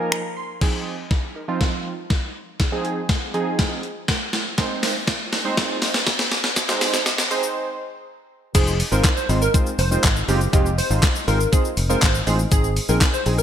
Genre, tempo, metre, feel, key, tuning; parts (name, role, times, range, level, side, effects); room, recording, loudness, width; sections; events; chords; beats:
dance-pop; 121 BPM; 4/4; straight; F minor; A4 = 440 Hz
warm analog keys; accompaniment; 0.0-13.4 s; F3 to C6; -25 LUFS; right 2 dB; chorus, sidechain pumping
gated 80s digital drum machine; drums; 0.1-13.4 s; crash cymbal, finger snaps, handclaps, hi-hat, kick drum, shaker, snare drum; -20 LUFS; equal; gated reverb, gated reverb snare
plucky unison lead; melody; 8.5-13.4 s; Ab4 to C5; -25 LUFS; equal; wide subtle chorus, sidechain pumping, ping-pong delay
fingered electric bass; bass; 8.5-13.4 s; F1 to Bb1; -21 LUFS; equal; sidechain pumping
moderate plate reverb, RT60 2.0 s, digital ambience; bright 1980s-style digital production, high-pass filter; -18 LUFS; side -9 dB against mid
0.6-8.5 A section; 8.5-13.4 B section
synth keys fill 0.0-0.6; build-up 0.6-8.5; drum fill 0.6-7.6; filter sweep 0.6-8.5; break 7.6-8.5; drop 8.5-13.4
0.0 Ebsus2; 4.6 Ab; 8.5 Fm7; 12.5 Ab
0.12 | 0.61 1.11 1.61 2.10 | 2.60 3.09 3.59 4.09 | 4.58 5.08 5.57 6.07 | 6.57 7.06 7.56 8.05 | 8.55 9.04 9.54 10.04 | 10.53 11.03 11.52 12.02 | 12.52 13.01